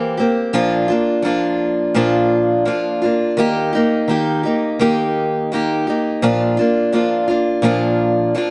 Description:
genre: rock.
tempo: 85 BPM.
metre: 4/4.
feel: straight.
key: unclear.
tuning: A4 = 439 Hz.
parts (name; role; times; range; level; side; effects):
picked steel-string acoustic guitar; solo; 0.0-8.5 s; Bb2 to G4; -17 LUFS; equal; none.
room: light reverb.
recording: dark, warm production, nothing above 10.5 kHz.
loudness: -17 LUFS.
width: mono.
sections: 0.6-8.5 A section.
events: none.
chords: 0.0 C7; 0.6 Bb; 3.4 Eb; 6.2 Bb.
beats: | 0.55 1.26 1.97 2.68 | 3.38 4.09 4.80 5.50 | 6.21 6.92 7.62 8.33.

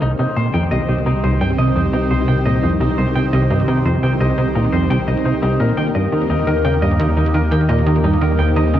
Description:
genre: ambient, sequencer-driven space music.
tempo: 86 BPM.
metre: 4/4.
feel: straight.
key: unclear.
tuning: A4 = 440 Hz.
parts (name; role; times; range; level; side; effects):
phased analog pad; sustained chords; 0.0-8.8 s; Eb3 to C5; -21 LUFS; equal; phaser, chorus.
semi-hollow electric guitar; arpeggios; 0.0-8.8 s; Eb4 to G5; -23 LUFS; moving between left 3 dB and right 4 dB; auto-pan, ping-pong delay.
tight sequencer bass; riff; 0.0-8.8 s; C2 to Eb3; -18 LUFS; equal; lush chorus, ping-pong delay.
analog drone; bass; 0.8-8.8 s; C2 to Eb2; -20 LUFS; equal; chorus.
room: wet huge ambient reverb, RT60 8.3 s.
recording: worn, warbling old tape, cassette tape, warbly pitch drift.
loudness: -14 LUFS.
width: side -11 dB against mid.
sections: 0.0-8.8 A section.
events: none.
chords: 0.0 Cm; 5.6 Eb.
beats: | 0.02 0.71 1.41 2.11 | 2.81 3.50 4.20 4.90 | 5.60 6.30 6.99 7.69 | 8.39.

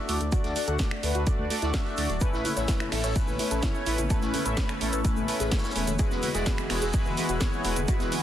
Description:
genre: progressive house.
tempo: 127 BPM.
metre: 4/4.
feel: straight.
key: unclear.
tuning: A4 = 440 Hz.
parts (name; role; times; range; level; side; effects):
soft supersaw; stabs; 0.0-8.2 s; G#3 to F#5; -30 LUFS; left 2 dB; phaser, sidechain pumping, low-pass filter, tape echo.
soft round pluck; arpeggios; 0.1-8.2 s; A3 to C#5; -34 LUFS; equal; wide subtle chorus, sidechain pumping, tape echo.
dark detuned saw bass; bass; 0.1-8.1 s; D1 to D2; -32 LUFS; equal; sidechain pumping.
house drum kit; drums; 0.1-8.2 s; cabasa, finger snaps, hi-hat, snare drum; -34 LUFS; right 2 dB; sidechain pumping on hats, soft clipping on snare, sidechain pumping on perc.
vintage drum kit; drums; 0.1-8.2 s; hi-hat, shaker, snare drum; -41 LUFS; right 2 dB; sidechain pumping on hats, high-pass filter on hats, soft clipping on snare, high-pass filter on snare, sidechain pumping on perc, high-pass filter on perc, high-pass filter on room.
electronic kick drum; drums; 0.3-8.0 s; none; -27 LUFS; equal; none.
airy breathy pad; sustained chords; 2.2-8.2 s; E3 to G#4; -35 LUFS; right 1 dB; chorus, phaser, sidechain pumping.
congas and cowbell; percussion; 2.4-8.2 s; none; -41 LUFS; left 3 dB; none.
room: light reverb, studio reverb.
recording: dense, heavily limited modern master.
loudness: -24 LUFS.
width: side -11 dB against mid.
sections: 0.0-8.2 A section.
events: none.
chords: 0.0 D; 2.2 Aadd9; 6.0 Eadd9.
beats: | 0.32 0.80 1.27 1.74 | 2.21 2.69 3.16 3.63 | 4.10 4.58 5.05 5.52 | 5.99 6.47 6.94 7.41 | 7.88.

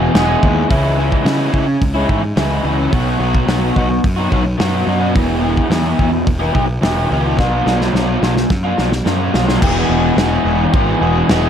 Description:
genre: rock, shoegaze and dream pop.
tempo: 108 BPM.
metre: 4/4.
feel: straight.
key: E major.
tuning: A4 = 440 Hz.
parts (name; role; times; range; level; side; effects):
crunchy overdriven guitar; riff; 0.0-11.5 s; E2 to G#4; -16 LUFS; equal; wide subtle chorus.
fuzz picked electric bass; bass; 0.0-11.5 s; E1 to C#3; -18 LUFS; equal; overdrive.
loose indie drum kit; drums; 0.1-11.4 s; crash cymbal, hi-hat, kick drum, snare drum; -18 LUFS; equal; none.
room: small room ambience.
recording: none.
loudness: -13 LUFS.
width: side -8 dB against mid.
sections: 0.7-9.6 A section; 9.6-11.5 B section.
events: drum fill 7.4-9.6.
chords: 0.0 E; 0.7 C#m; 2.9 B; 5.2 E; 7.4 B; 9.6 E.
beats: 0.15 | 0.71 1.26 1.82 2.37 | 2.93 3.49 4.04 4.60 | 5.16 5.71 6.27 6.83 | 7.38 7.94 8.50 9.06 | 9.62 10.17 10.73 11.29.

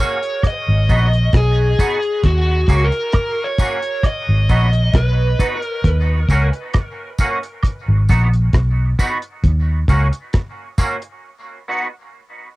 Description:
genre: dub reggae.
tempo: 67 BPM.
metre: 4/4.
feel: straight.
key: Eb minor.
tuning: A4 = 439 Hz.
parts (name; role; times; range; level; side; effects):
bluesy overdriven lead guitar; melody; 0.0-5.9 s; Gb4 to Eb5; -22 LUFS; equal; distortion, cassette tape, dub echo.
clean electric guitar; accompaniment; 0.0-11.9 s; Bb3 to Gb4; -24 LUFS; right 2 dB; ensemble chorus, high-pass filter, cassette tape, dub echo.
tambourine and woodblock; percussion; 0.0-11.0 s; none; -33 LUFS; right 5 dB; high-pass filter on perc, dub echo.
deep reggae drum kit; drums; 0.2-11.2 s; hi-hat, kick drum, rim click; -16 LUFS; equal; cassette tape.
vintage muted fingered electric bass; bass; 0.7-10.1 s; Ab1 to Eb2; -14 LUFS; equal; transformer saturation.
room: light reverb.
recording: home recording on cassette.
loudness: -15 LUFS.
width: side -19 dB against mid.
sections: 0.0-12.6 A section.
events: break 5.8-12.6; filter sweep 9.4-12.6.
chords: 0.4 Abm7; 2.2 Ebm7; 4.0 Abm7 (rootless); 5.8 Ebm7; 7.6 Abm7 (rootless); 9.4 Ebm7; 11.2 B.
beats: 0.44 1.34 | 2.24 3.14 4.04 4.94 | 5.84 6.74 7.64 8.54 | 9.44 10.34 11.24.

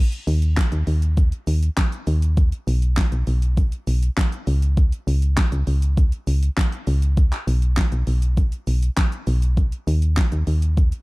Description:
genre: dance-pop.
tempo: 100 BPM.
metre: 4/4.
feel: straight.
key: unclear.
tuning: A4 = 437 Hz.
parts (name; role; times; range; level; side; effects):
pop drum kit; drums; 0.1-11.0 s; handclaps, hi-hat, kick drum, shaker, snare drum; -21 LUFS; equal; overdrive.
solid FM bass; bass; 0.3-10.9 s; B1 to Eb2; -19 LUFS; equal; sidechain pumping.
room: little or no reverb.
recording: dark, warm production.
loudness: -18 LUFS.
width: side -24 dB against mid.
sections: 0.0-11.0 A section.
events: none.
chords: none.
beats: 0.57 1.17 1.77 | 2.37 2.97 3.57 4.17 | 4.77 5.37 5.97 6.57 | 7.17 7.77 8.37 8.97 | 9.57 10.17 10.77.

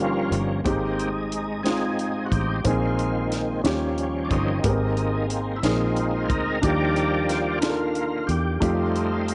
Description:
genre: slow gospel.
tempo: 60 BPM (dotted quarters).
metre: 6/8.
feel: straight.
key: Eb major.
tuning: A4 = 439 Hz.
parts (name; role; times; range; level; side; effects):
dark grand piano; accompaniment; 0.0-9.3 s; G2 to Bb4; -28 LUFS; equal; none.
overdriven tonewheel organ; sustained chords; 0.0-9.3 s; Eb3 to D5; -29 LUFS; equal; slow rotary speaker, chorus vibrato.
fingered electric bass; bass; 0.0-9.3 s; G1 to F2; -30 LUFS; equal; none.
tight funk drum kit; drums; 0.3-9.3 s; hi-hat, kick drum, snare drum; -31 LUFS; equal; none.
room: light reverb, small room ambience.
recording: nothing above 10.5 kHz.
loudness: -24 LUFS.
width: mono.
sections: 0.0-9.3 A section.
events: tonewheel organ solo 0.0-9.3.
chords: 0.0 Eb7/G; 0.7 Abmaj7; 2.6 Bb9sus4; 3.6 Eb9; 4.6 Abmaj9; 5.6 Bb9sus4; 6.6 Ebmaj9; 8.6 F9.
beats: | 0.65 1.65 | 2.65 3.64 | 4.64 5.63 | 6.63 7.63 | 8.62.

